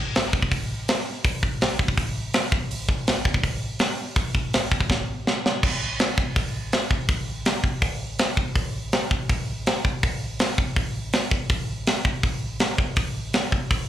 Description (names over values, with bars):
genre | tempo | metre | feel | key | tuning
punk | 164 BPM | 4/4 | straight | none | none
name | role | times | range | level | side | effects
tight metal drum kit | drums | 0.2-13.8 s | crash cymbal, hi-hat, kick drum, snare drum | -22 LUFS | equal | none
room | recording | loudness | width
light reverb | live gig heard through the venue's PA, club reverb | -22 LUFS | side -12 dB against mid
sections
0.0-5.6 A section; 5.6-13.9 B section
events
drum fill 4.9-5.6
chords
none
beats
0.14 0.51 0.88 | 1.24 1.61 1.97 2.34 | 2.70 3.07 3.43 3.80 | 4.16 4.53 4.89 5.26 | 5.63 5.99 6.36 6.72 | 7.09 7.46 7.83 8.19 | 8.56 8.93 9.29 9.66 | 10.03 10.40 10.76 11.13 | 11.50 11.87 12.23 12.60 | 12.97 13.33 13.70